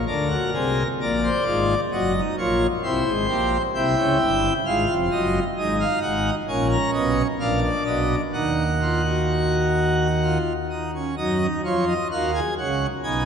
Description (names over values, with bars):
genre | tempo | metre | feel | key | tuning
classical, baroque-style 3-part fugue for pipe organ | 65 BPM | 3/4 | straight | Eb minor from 5.6 s | A4 = 440 Hz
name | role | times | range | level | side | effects
pipe organ, plenum | solo | 0.0-13.3 s | F1 to Bb5 | -20 LUFS | equal | none
room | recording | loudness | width
wet cathedral reverb, RT60 4.3 s | nothing above 10.9 kHz | -20 LUFS | side -7 dB against mid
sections
0.1-11.2 A section; 11.2-13.3 B section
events
none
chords
0.1 A#7; 1.9 D#m/F#; 2.8 C7; 4.7 Fm; 5.6 Ebmadd11/Ab; 6.5 Eb5/Bb; 7.4 Bb; 8.3 Ebm